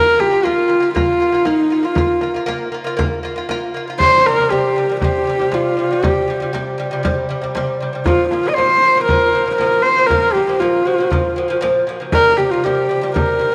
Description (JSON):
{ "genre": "mongolian traditional, Mongolian folk", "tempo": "118 BPM", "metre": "4/4", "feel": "straight", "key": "Bb zhi mode", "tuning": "A4 = 440 Hz", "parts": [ { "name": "rich horsehead fiddle", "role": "melody", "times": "0.0-13.5 s", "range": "Eb4 to Eb5", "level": "-17 LUFS", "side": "equal", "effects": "tape echo" }, { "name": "lute", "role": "arpeggios", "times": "0.0-13.5 s", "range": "Bb2 to F4", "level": "-24 LUFS", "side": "equal", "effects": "none" }, { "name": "frame drum", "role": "percussion", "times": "0.2-13.5 s", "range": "none", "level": "-24 LUFS", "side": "equal", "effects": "none" } ], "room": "wet echo chamber reverb, RT60 1.8 s, small room ambience", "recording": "none", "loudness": "-16 LUFS", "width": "mono", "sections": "0.0-13.5 A section", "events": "none", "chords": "0.0 Bb5; 4.0 C5; 8.1 Bb5; 12.1 C5" }